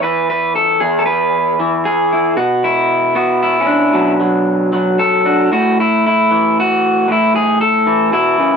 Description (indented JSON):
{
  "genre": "folk, solo fingerstyle acoustic guitar",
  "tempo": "115 BPM",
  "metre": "3/4",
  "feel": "straight",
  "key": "A major",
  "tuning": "A4 = 440 Hz",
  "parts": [
    { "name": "electric guitar through a small old amp", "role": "solo", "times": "0.0-8.6 s", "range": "E2 to B4", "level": "-12 LUFS", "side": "equal", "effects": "none" }
  ],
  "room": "moderate studio reverb, RT60 0.5 s",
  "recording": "minimal, uncompressed stereo recording",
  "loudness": "-12 LUFS",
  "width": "side -6 dB against mid",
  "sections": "0.0-5.5 A section; 5.5-8.6 A section",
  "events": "none",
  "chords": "0.0 N.C.; 2.4 Bmadd9; 5.5 A5",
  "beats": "0.29 | 0.81 1.34 1.86 | 2.38 2.89 3.41 | 3.93 4.45 4.98 | 5.51 6.04 6.57 | 7.09 7.61 8.13"
}